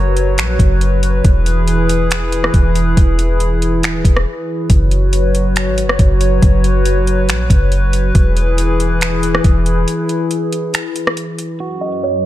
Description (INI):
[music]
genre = hip hop, atmospheric cloud-rap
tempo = 139 BPM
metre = 4/4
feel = half-time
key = E major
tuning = A4 = 441 Hz
[part]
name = hollow soft pad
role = sustained chords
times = 0.0-12.3 s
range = F#2 to C#5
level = -18 LUFS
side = left 1 dB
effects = chorus, sidechain pumping, low-pass filter
[part]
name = soft 808-style bass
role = bass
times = 0.0-9.9 s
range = D#1 to A#1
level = -15 LUFS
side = equal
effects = none
[part]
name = smooth R&B drum kit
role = drums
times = 0.2-11.5 s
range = finger snaps, hi-hat, kick drum, rim click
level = -14 LUFS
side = equal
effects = none
[part]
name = clean electric guitar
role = arpeggios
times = 11.6-12.2 s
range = F#4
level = -25 LUFS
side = right 6 dB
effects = low-pass filter, digital delay
[part]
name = buzzing kalimba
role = melody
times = 11.8-12.3 s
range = C#5 to D#5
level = -22 LUFS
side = right 4 dB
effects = low-pass filter
[sound]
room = little or no reverb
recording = none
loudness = -12 LUFS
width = side -14 dB against mid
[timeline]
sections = 0.0-11.6 A section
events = break 4.3-4.7, 9.9-11.6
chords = 0.0 F#sus4; 1.2 E; 4.7 F#sus4; 8.2 E; 11.6 F#sus4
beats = 0.38 0.81 | 1.24 1.68 2.11 2.54 | 2.97 3.40 3.83 4.27 | 4.70 5.13 5.56 5.99 | 6.42 6.86 7.29 7.72 | 8.15 8.58 9.01 9.45 | 9.88 10.31 10.74 11.17 | 11.60 12.04